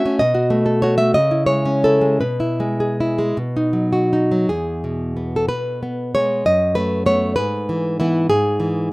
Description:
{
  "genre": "romantic piece for solo classical guitar",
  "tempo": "51-66 BPM (dotted quarters)",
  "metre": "6/8",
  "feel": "rubato",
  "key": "E major",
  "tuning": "A4 = 440 Hz",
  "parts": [
    { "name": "nylon-string guitar", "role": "solo", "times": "0.0-8.9 s", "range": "E2 to E5", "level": "-16 LUFS", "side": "equal", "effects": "none" }
  ],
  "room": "light reverb",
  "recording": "rough home demo mix",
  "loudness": "-16 LUFS",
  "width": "side -24 dB against mid",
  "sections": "0.0-4.5 A section; 4.5-8.9 B section",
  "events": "none",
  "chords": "0.2 B7; 1.2 C#m; 2.2 E/B; 3.4 B; 4.5 E; 6.4 B5/F#; 7.4 E/G#"
}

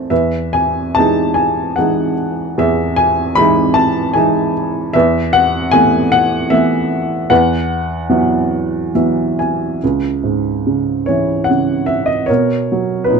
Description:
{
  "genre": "classical, lyrical solo piano",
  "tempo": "68-77 BPM",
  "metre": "3/4",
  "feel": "rubato",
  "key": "E major, C# dorian from 9.8 s",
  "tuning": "A4 = 440 Hz",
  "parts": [
    { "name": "warm upright piano", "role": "solo", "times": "0.0-13.2 s", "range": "C#2 to B5", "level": "-13 LUFS", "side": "equal", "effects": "none" }
  ],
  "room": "light reverb",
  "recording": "dark, warm production",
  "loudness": "-13 LUFS",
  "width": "side -5 dB against mid",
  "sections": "0.0-9.8 A section; 9.8-13.2 B section",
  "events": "upright piano fill 8.5-9.8",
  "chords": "0.1 Emaj7; 4.9 Asus2/E; 7.3 Esus2; 9.8 C#m; 12.3 Bmaj7"
}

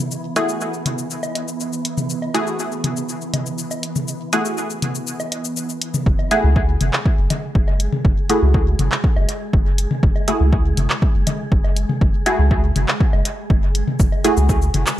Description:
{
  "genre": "dub techno",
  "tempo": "121 BPM",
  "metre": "4/4",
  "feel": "straight",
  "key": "F# minor",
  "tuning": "A4 = 440 Hz",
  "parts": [
    { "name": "wind-like tuned noise texture", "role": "texture", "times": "0.0-15.0 s", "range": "E3 to B4", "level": "-29 LUFS", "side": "right 1 dB", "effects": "built-in reverb, sidechain pumping" },
    { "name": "punchy analog drum machine", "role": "drums", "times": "0.1-15.0 s", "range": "cabasa, handclaps, hi-hat", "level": "-24 LUFS", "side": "left 1 dB", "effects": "none" },
    { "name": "filtered dub chord stab", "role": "stabs", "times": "0.4-14.5 s", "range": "A3 to G#4", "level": "-22 LUFS", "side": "equal", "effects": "chorus, phaser, cassette tape, sidechain pumping, dub echo" },
    { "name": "electronic toms and woodblock", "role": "percussion", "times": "0.9-14.8 s", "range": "none", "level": "-25 LUFS", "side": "left 1 dB", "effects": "sidechain pumping on toms, sidechain pumping on perc, dub echo" },
    { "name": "soft dub sub bass", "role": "bass", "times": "6.1-14.8 s", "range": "F#1 to C#2", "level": "-18 LUFS", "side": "equal", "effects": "sidechain pumping" },
    { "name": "electronic kick drum", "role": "drums", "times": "6.1-14.6 s", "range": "none", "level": "-17 LUFS", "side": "equal", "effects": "overdrive" }
  ],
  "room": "digital ambience",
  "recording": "none",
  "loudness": "-16 LUFS",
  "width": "side -13 dB against mid",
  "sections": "0.0-6.1 A section; 6.1-15.0 B section",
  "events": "none",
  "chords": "0.0 F#m9"
}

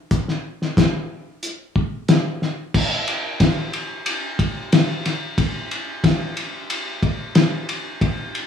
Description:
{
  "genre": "blues",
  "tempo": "91 BPM",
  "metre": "4/4",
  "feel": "straight",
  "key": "none",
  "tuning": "none",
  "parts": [
    { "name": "cloth-damped thuddy drum kit", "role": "drums", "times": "0.1-8.5 s", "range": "crash cymbal, hi-hat, kick drum, ride cymbal, snare drum", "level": "-19 LUFS", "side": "left 2 dB", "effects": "none" }
  ],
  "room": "wet studio reverb, RT60 0.7 s",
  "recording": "small room ambience",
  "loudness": "-19 LUFS",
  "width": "side -8 dB against mid",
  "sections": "0.0-2.7 A section; 2.7-8.5 A section",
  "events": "none",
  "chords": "none"
}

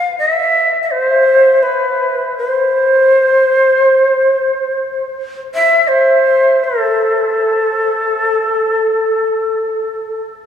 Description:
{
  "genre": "japanese traditional, Japanese chamber music",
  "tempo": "free time",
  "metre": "none",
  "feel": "none",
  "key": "A hirajoshi",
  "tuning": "A4 = 444 Hz",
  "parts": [
    { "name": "breathy bright shakuhachi", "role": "solo", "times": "0.0-10.2 s", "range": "A4 to F5", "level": "-11 LUFS", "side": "equal", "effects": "none" }
  ],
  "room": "wet cathedral reverb, RT60 5.6 s",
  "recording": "in a vast, echoing space",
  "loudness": "-11 LUFS",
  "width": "side -8 dB against mid",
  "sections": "0.0-10.5 A section",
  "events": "none",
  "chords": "none"
}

